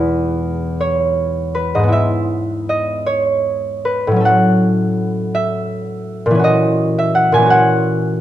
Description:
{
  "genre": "classical, solo harp piece",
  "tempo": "50-57 BPM (dotted quarters)",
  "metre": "6/8",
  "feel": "rubato",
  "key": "E major",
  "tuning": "A4 = 440 Hz",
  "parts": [
    { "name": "concert harp", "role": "solo", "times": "0.0-8.2 s", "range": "E2 to G#5", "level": "-14 LUFS", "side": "equal", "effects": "none" }
  ],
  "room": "moderate recital hall reverb, RT60 1.4 s",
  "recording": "close, detailed microphones",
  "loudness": "-14 LUFS",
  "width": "side -12 dB against mid",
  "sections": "0.0-8.2 A section",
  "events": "none",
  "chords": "0.0 E; 1.9 E/G#; 4.3 F#m/A; 6.4 F#7/A#"
}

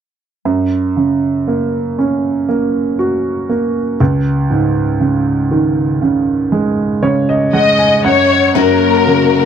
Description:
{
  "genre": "pop",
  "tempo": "59 BPM",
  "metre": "4/4",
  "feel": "straight",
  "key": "F# major",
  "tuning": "A4 = 441 Hz",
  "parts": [
    { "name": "clear upright piano", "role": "accompaniment", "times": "0.5-9.5 s", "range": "C#2 to G#5", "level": "-13 LUFS", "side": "right 2 dB", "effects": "none" },
    { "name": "warm symphonic violin section", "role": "melody", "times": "7.6-9.5 s", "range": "A#4 to D#5", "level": "-12 LUFS", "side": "left 5 dB", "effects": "none" },
    { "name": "warm studio string section", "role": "sustained chords", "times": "8.6-9.5 s", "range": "C#3 to A#4", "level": "-16 LUFS", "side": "left 7 dB", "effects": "none" },
    { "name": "picked steel-string acoustic guitar", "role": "arpeggios", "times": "8.6-9.5 s", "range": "F#3 to A#4", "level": "-14 LUFS", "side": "left 16 dB", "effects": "none" }
  ],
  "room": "small room ambience",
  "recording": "dry, close 1970s-style studio recording",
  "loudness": "-12 LUFS",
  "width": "side -8 dB against mid",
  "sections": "0.5-8.6 A section",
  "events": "upright piano fill 6.5-8.6",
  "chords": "0.5 F#; 4.0 C#sus2; 8.0 N.C.; 8.6 F#"
}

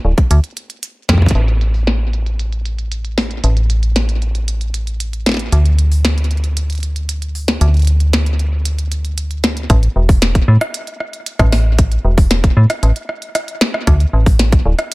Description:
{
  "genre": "IDM",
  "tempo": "115 BPM",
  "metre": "4/4",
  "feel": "straight",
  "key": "unclear",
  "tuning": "A4 = 440 Hz",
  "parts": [
    { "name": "metallic FM bass", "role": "bass", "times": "0.0-14.7 s", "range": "D1 to A2", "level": "-14 LUFS", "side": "equal", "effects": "none" },
    { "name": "electronic kick drum", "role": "drums", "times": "0.2-1.3, 9.7-14.6 s", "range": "none", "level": "-12 LUFS", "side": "equal", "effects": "studio reverb" },
    { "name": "glitchy drum kit", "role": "drums", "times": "0.2-14.9 s", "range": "hi-hat, rim click, snare drum", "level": "-19 LUFS", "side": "equal", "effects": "low-pass filter on hats, studio reverb, low-pass filter on snare, tape echo" }
  ],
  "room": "light reverb",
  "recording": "echo-heavy mix",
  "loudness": "-13 LUFS",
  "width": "side -21 dB against mid",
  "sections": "0.0-1.4 A section; 1.4-9.7 B section; 9.7-14.9 C section",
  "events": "drum fill 1.1; band accent 1.1",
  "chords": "none"
}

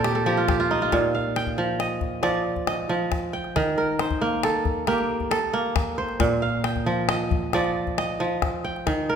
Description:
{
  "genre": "west african traditional, West African string and xylophone music",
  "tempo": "91 BPM (dotted quarters)",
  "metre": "12/8",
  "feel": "straight",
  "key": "unclear",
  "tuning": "A4 = 441 Hz",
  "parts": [
    { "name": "kora", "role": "arpeggios", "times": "0.0-9.2 s", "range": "Bb2 to G5", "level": "-23 LUFS", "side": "right 2 dB", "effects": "none" },
    { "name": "calabash", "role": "percussion", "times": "0.0-9.0 s", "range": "none", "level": "-29 LUFS", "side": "left 5 dB", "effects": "none" }
  ],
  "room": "wet recital hall reverb, RT60 1.7 s",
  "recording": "minimal, uncompressed stereo recording",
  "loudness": "-22 LUFS",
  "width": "side -7 dB against mid",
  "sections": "0.9-9.2 A section",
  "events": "kora fill 0.0-0.9",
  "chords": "0.0 Bb5; 0.9 Bb; 3.5 Eb; 6.2 Bb"
}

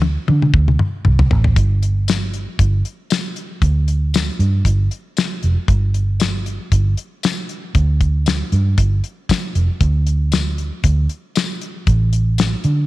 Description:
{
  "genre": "straight-eighth soul blues",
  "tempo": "116 BPM",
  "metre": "4/4",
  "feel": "swing 55% on 16ths",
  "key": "unclear",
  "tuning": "A4 = 440 Hz",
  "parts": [
    { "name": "vintage muted fingered electric bass", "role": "bass", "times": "0.0-12.9 s", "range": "F1 to D3", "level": "-15 LUFS", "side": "right 1 dB", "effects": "none" },
    { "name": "damped 70s drum kit", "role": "drums", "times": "0.0-12.8 s", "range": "hi-hat, kick drum, snare drum, tambourine, toms", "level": "-18 LUFS", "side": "left 2 dB", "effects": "none" }
  ],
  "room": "light reverb",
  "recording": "1960s-style stereo",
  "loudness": "-15 LUFS",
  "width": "side -17 dB against mid",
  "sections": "0.0-1.6 A section; 1.6-12.9 B section",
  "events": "drum fill 0.0-1.6",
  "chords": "none"
}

